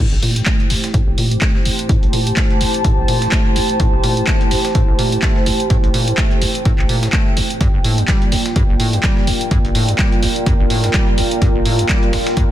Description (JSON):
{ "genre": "acid house", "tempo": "126 BPM", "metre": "4/4", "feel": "swing 57% on 16ths", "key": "A phrygian", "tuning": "A4 = 438 Hz", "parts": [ { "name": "dark analog pad", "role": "sustained chords", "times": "0.0-12.5 s", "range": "A3 to G5", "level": "-24 LUFS", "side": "right 2 dB", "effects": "chorus, sidechain pumping" }, { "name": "acid bass, square", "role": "riff", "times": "0.0-12.4 s", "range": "G1 to A3", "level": "-20 LUFS", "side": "equal", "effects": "overdrive, wide subtle chorus, sidechain pumping" }, { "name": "warbly tape-like pad", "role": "texture", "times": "0.8-12.5 s", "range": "F4 to A5", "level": "-23 LUFS", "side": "equal", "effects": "chorus, built-in reverb, sidechain pumping" }, { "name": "dusty soul sampler-style drum kit", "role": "drums", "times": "0.2-12.5 s", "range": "hi-hat, snare drum", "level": "-29 LUFS", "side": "left 1 dB", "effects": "none" }, { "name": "punchy analog drum machine", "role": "drums", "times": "0.2-12.5 s", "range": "handclaps, hi-hat", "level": "-22 LUFS", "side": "equal", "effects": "none" }, { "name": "electronic kick drum", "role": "drums", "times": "0.5-12.5 s", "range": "none", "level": "-16 LUFS", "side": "equal", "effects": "none" } ], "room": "light reverb", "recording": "dense, heavily limited modern master", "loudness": "-13 LUFS", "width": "side -12 dB against mid", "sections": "0.0-12.5 A section", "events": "none", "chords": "0.0 Am7; 7.6 Gm7" }